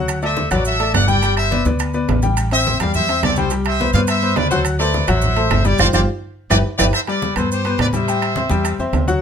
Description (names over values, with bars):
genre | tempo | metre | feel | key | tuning
latin, salsa | 210 BPM | 4/4 | straight | C major | A4 = 440 Hz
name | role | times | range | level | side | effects
bright concert grand piano | accompaniment | 0.0-9.2 s | F#3 to G5 | -21 LUFS | left 4 dB | none
upright bass | bass | 0.0-9.2 s | G1 to A2 | -20 LUFS | right 1 dB | none
claves | percussion | 0.1-8.8 s | none | -27 LUFS | right 8 dB | none
congas | percussion | 0.1-9.2 s | none | -25 LUFS | left 2 dB | none
maracas | percussion | 0.1-9.2 s | none | -32 LUFS | right 5 dB | none
timbales | percussion | 0.1-9.1 s | none | -26 LUFS | right 9 dB | none
brilliant trumpet section | melody | 0.2-8.8 s | G4 to G5 | -20 LUFS | equal | none
room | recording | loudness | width
light reverb | close, detailed microphones | -15 LUFS | side -7 dB against mid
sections
0.0-6.9 A section; 6.9-9.2 B section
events
drum fill 5.8-6.9; band accent 5.8-6.9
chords
0.1 Dadd9; 1.2 Gadd9; 2.4 Am7; 3.5 Cmaj7; 4.7 D7; 5.8 G7sus4; 6.4 G6; 6.9 C5; 8.1 Am7